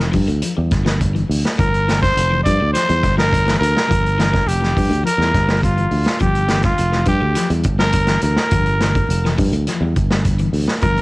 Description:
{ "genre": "afrobeat", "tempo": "104 BPM", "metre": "4/4", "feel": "straight", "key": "G dorian", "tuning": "A4 = 440 Hz", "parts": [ { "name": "growling trumpet", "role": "melody", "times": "0.0-11.0 s", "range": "F4 to D5", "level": "-19 LUFS", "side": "equal", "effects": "cassette tape" }, { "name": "electric guitar at the edge of break-up", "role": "arpeggios", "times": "0.0-11.0 s", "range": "D3 to G3", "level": "-26 LUFS", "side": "left 5 dB", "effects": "harmonic tremolo, cassette tape, analog delay" }, { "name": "fingered electric bass", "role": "bass", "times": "0.0-11.0 s", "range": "F1 to G2", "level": "-18 LUFS", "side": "equal", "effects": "none" }, { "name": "vintage drum kit", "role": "drums", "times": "0.1-11.0 s", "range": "hi-hat, kick drum, snare drum", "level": "-20 LUFS", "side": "equal", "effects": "cassette tape" } ], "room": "studio ambience", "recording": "home recording on cassette", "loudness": "-14 LUFS", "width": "side -21 dB against mid", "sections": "0.0-11.0 A section", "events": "none", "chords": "0.0 Gm7", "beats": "0.42 1.00 | 1.58 2.16 2.74 3.32 | 3.90 4.48 5.05 5.63 | 6.21 6.79 7.36 7.94 | 8.52 9.09 9.67 10.25 | 10.82" }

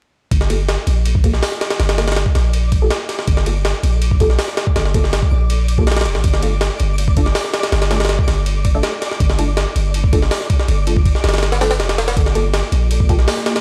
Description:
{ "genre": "drum and bass, jungle", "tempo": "162 BPM", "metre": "4/4", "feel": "straight", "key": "G minor", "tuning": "A4 = 439 Hz", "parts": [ { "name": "long sustained 808-style bass", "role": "bass", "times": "0.3-13.3 s", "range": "F1 to Bb1", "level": "-19 LUFS", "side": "equal", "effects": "none" }, { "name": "jungle sampler-style drum kit", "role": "drums", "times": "0.3-13.6 s", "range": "hi-hat, kick drum, ride cymbal, snare drum", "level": "-19 LUFS", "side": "equal", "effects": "none" }, { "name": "twinkling granular texture", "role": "texture", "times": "0.6-13.6 s", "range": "D5 to D6", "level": "-33 LUFS", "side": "equal", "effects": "built-in reverb" }, { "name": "filtered dub chord stab", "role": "stabs", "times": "0.5-13.2 s", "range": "A3 to A4", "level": "-27 LUFS", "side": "equal", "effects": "phaser, lush chorus, dub echo" }, { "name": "granular cloud pad", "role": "sustained chords", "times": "12.6-13.6 s", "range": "Bb3 to A4", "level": "-29 LUFS", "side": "equal", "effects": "built-in reverb, vintage 12-bit sampler grit" } ], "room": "little or no reverb", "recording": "dry, gritty hardware recording, vinyl crackle", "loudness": "-16 LUFS", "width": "mono", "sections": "0.3-13.6 A section", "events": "filter sweep on synth stab 0.3-13.6", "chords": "0.3 Gm9; 6.2 Dm/G; 12.2 Gm9", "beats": "| 0.32 0.69 1.06 1.43 | 1.80 2.17 2.54 2.91 | 3.28 3.65 4.02 4.39 | 4.76 5.13 5.50 5.87 | 6.24 6.61 6.98 7.35 | 7.72 8.09 8.46 8.83 | 9.21 9.57 9.95 10.32 | 10.69 11.06 11.43 11.80 | 12.17 12.54 12.91 13.28" }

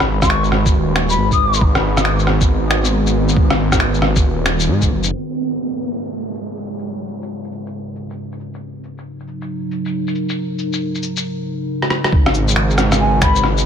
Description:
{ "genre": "future garage", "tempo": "137 BPM", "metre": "4/4", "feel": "swing 64% on 16ths", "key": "unclear", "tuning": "A4 = 439 Hz", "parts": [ { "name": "warbly tape-like pad", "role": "sustained chords", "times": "0.0-13.7 s", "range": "G#2 to B4", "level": "-22 LUFS", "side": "equal", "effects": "chorus, built-in reverb, sidechain pumping" }, { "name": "swelling detuned saw bass", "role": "bass", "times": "0.0-5.1, 12.1-13.7 s", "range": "D#1 to G#2", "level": "-18 LUFS", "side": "equal", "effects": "sidechain pumping" }, { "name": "electronic rim click, shaker, finger snaps and cabasa", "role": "drums", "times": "0.0-13.6 s", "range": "none", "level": "-19 LUFS", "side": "left 1 dB", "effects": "none" }, { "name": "mellow jazz flute", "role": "melody", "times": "0.2-1.6, 13.0-13.5 s", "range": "G#5 to D#6", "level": "-22 LUFS", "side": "left 3 dB", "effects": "vintage 12-bit sampler grit, dub echo" }, { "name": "electronic kick drum", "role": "drums", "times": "0.2-4.9, 12.1-13.3 s", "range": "none", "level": "-16 LUFS", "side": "equal", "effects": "none" }, { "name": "downlifter", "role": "sound effects", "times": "5.1-8.6 s", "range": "none", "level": "-26 LUFS", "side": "right 3 dB", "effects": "none" } ], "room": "light reverb", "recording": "low-pass filter", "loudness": "-15 LUFS", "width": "side -8 dB against mid", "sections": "0.0-5.1 A section; 5.1-12.1 B section; 12.1-13.7 C section", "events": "filter sweep on ambient pad 5.1-12.1; filter sweep 5.1-12.1; drum fill 11.8-12.1", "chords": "0.0 G#m7; 5.1 C#7sus4/G#; 8.6 D#m7/G#; 12.1 C#7sus4/G#", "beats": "0.30 0.74 1.18 | 1.61 2.05 2.49 2.93 | 3.37 3.81 4.24 4.68 | 5.12 5.56 6.00 6.43 | 6.87 7.31 7.75 8.19 | 8.62 9.06 9.50 9.94 | 10.37 10.81 11.25 11.69 | 12.13 12.56 13.00 13.44" }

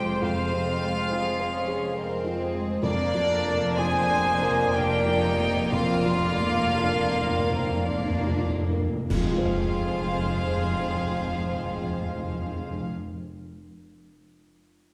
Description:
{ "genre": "cinematic, emotional film score for orchestra", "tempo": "48-70 BPM", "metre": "3/4", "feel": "rubato", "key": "F minor", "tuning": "A4 = 440 Hz", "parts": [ { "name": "rich studio violin section", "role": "melody", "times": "0.0-12.8 s", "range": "D5 to Ab5", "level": "-36 LUFS", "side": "equal", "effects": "none" }, { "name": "mellow cor anglais", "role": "second line", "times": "0.0-12.9 s", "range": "D4 to Ab4", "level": "-36 LUFS", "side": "equal", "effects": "none" }, { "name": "mellow hollow silver concert flute", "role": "second line", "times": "0.0-12.8 s", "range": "D5 to Ab5", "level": "-34 LUFS", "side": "equal", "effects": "none" }, { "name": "rich studio violin section", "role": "second line", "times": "0.0-12.8 s", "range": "Bb3 to C5", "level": "-37 LUFS", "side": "equal", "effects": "none" }, { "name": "dark studio viola section", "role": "accompaniment", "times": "0.0-12.8 s", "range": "F3 to D5", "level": "-36 LUFS", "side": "equal", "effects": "none" }, { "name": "felt-muted upright piano", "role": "accompaniment", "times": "0.0-14.9 s", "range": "F2 to F5", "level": "-33 LUFS", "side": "equal", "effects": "none" }, { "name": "mellow French horn section", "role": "sustained chords", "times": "0.0-12.8 s", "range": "Ab3 to D5", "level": "-36 LUFS", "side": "equal", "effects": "none" }, { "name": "dark studio cello section", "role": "bass", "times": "0.0-12.8 s", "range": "F2", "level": "-36 LUFS", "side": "equal", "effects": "none" }, { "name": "dark studio double bass section", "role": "bass", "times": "0.0-12.8 s", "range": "F1", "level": "-36 LUFS", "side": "equal", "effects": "none" }, { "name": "timpani", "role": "percussion", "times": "2.8-12.8 s", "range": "F2", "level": "-35 LUFS", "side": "equal", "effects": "none" }, { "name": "clash cymbals and concert bass drum", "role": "percussion", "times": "9.1-11.5 s", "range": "none", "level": "-37 LUFS", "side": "equal", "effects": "none" } ], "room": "wet recital hall reverb, RT60 1.6 s", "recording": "recorded in a church or concert hall", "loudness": "-26 LUFS", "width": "mono", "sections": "0.0-9.1 A section; 9.1-12.8 B section", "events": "slowing down 1.5-9.1; timpani fill 2.8-9.1; band accent 9.1-10.3", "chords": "0.0 Fm; 2.8 Bb/F; 9.1 Fm", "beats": "| 0.23 1.11 1.96 | 2.84 3.79 4.74 | 5.72 6.75 7.87 | 9.10 10.33 11.55" }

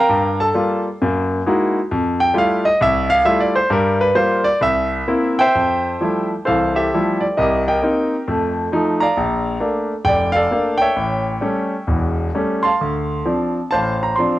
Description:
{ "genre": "solo jazz", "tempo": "132 BPM", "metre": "4/4", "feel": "swing 66% on 8ths, rubato", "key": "F major", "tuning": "A4 = 440 Hz", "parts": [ { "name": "clear concert grand piano", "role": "solo", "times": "0.0-14.4 s", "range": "E1 to C6", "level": "-15 LUFS", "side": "equal", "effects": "cassette tape" } ], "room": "moderate spring reverb, RT60 1.3 s, small room ambience", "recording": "home recording on cassette", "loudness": "-16 LUFS", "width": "side -15 dB against mid", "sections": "0.0-5.5 A section; 5.5-14.4 B section", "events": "grand piano solo 0.0-5.5", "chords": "0.1 Gm7; 1.0 Gb13; 1.9 Fmaj9; 3.7 Gm7; 4.6 C7; 5.5 Fmaj9; 7.4 Cm7; 8.3 F7; 9.2 Bbmaj7; 11.0 A7; 12.8 Dm7", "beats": "| 0.10 0.55 1.00 1.46 | 1.91 2.36 2.81 3.25 | 3.70 4.15 4.61 5.08 | 5.54 6.00 6.46 6.92 | 7.37 7.83 8.28 8.73 | 9.17 9.62 10.06 10.52 | 10.97 11.42 11.88 12.34 | 12.80 13.26 13.72 14.18" }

